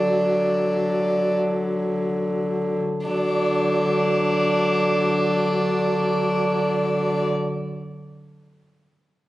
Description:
classical, slow romantic movement for string quartet; free time; D major; A4 = 440 Hz
rich violin; melody; 0.0-7.3 s; D5; -26 LUFS; equal
rich violin; second line; 0.0-7.2 s; D4; -26 LUFS; right 1 dB
warm viola; accompaniment; 0.0-7.3 s; F#3; -24 LUFS; left 1 dB
warm cello; bass; 0.0-7.3 s; D3; -25 LUFS; right 1 dB
moderate recital hall reverb, RT60 1.5 s; recorded on a phone in the room, club reverb, compression; -19 LUFS; side -16 dB against mid
0.0-3.1 A section; 3.1-9.3 B section
slowing down 0.0-3.1
0.0 D

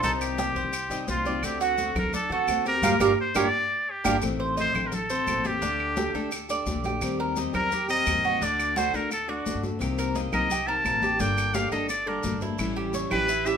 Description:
latin, Cuban son and guajira; 172 BPM; 4/4; straight; G minor; A4 = 441 Hz
trumpet with straight mute; melody; 0.0-13.6 s; F4 to A5; -27 LUFS; left 1 dB
picked steel-string acoustic guitar; accompaniment; 0.0-13.6 s; C3 to A4; -32 LUFS; left 4 dB
Cuban tres; arpeggios; 0.0-13.6 s; D4 to Eb5; -28 LUFS; right 5 dB
upright bass; bass; 0.0-13.6 s; G1 to D3; -34 LUFS; left 1 dB
congas; percussion; 0.0-13.6 s; -35 LUFS; left 2 dB
maracas; percussion; 0.0-13.6 s; -38 LUFS; left 4 dB
claves; percussion; 0.2-13.3 s; -36 LUFS; right 4 dB
moderate large studio reverb, RT60 0.8 s; minimal, uncompressed stereo recording; -23 LUFS; side -7 dB against mid
0.0-4.2 A section; 4.2-13.6 B section
band accent 2.8-4.2
0.0 Cm; 1.4 D7; 2.8 Gm7; 4.2 Adim; 5.6 Dsus4; 7.0 Eb6; 8.4 D; 9.8 Cm7; 11.2 Gmadd9; 12.6 A7

